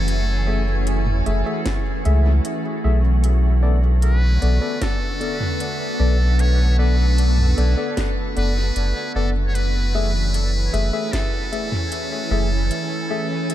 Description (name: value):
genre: ambient dub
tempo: 76 BPM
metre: 4/4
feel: straight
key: B dorian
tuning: A4 = 438 Hz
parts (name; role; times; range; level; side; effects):
- trumpet with metal mute; melody; 0.0-13.5 s; A4 to C#5; -28 LUFS; equal; dub echo
- soft additive organ-like pad; sustained chords; 0.0-13.5 s; D3 to G#5; -27 LUFS; right 1 dB; ensemble chorus, built-in reverb
- soft dub sub bass; bass; 0.0-12.7 s; F#1 to C#2; -17 LUFS; equal; none
- organic electronic drum kit; drums; 0.1-13.5 s; hi-hat, snare drum, toms; -30 LUFS; right 1 dB; studio ambience, dub echo
- barky tine electric piano; stabs; 0.5-13.3 s; A3 to E5; -28 LUFS; left 4 dB; medium stereo tremolo, low-pass filter, dub echo
- electronic kick drum; drums; 1.7-11.3 s; none; -26 LUFS; equal; studio ambience
room: little or no reverb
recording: none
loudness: -17 LUFS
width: side -13 dB against mid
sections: 0.0-13.5 A section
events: none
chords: 0.0 F#m9; 3.2 Bm7; 9.6 F#m9